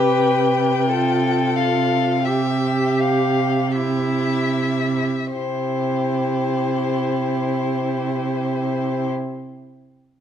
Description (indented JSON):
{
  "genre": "classical, slow romantic movement for string quartet",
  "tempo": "35-45 BPM",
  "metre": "4/4",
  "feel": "rubato",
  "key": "C major",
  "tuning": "A4 = 442 Hz",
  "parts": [
    { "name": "rich violin", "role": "melody", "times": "0.0-9.1 s", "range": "C5 to G5", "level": "-24 LUFS", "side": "left 7 dB", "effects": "none" },
    { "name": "rich violin", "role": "second line", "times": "0.0-9.1 s", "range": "E4 to B4", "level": "-25 LUFS", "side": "left 3 dB", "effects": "none" },
    { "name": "warm viola", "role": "accompaniment", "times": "0.0-9.1 s", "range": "E4 to G4", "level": "-26 LUFS", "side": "right 3 dB", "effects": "none" },
    { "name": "rich cello", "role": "bass", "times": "0.0-9.1 s", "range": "C3", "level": "-22 LUFS", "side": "right 3 dB", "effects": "none" }
  ],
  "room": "moderate stone room reverb, RT60 1.3 s",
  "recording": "dark, warm production",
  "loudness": "-18 LUFS",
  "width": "side -9 dB against mid",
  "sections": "0.0-5.4 A section; 5.4-10.2 B section",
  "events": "slowing down 0.0-5.4",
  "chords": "0.0 G7(no3)/C; 5.4 C"
}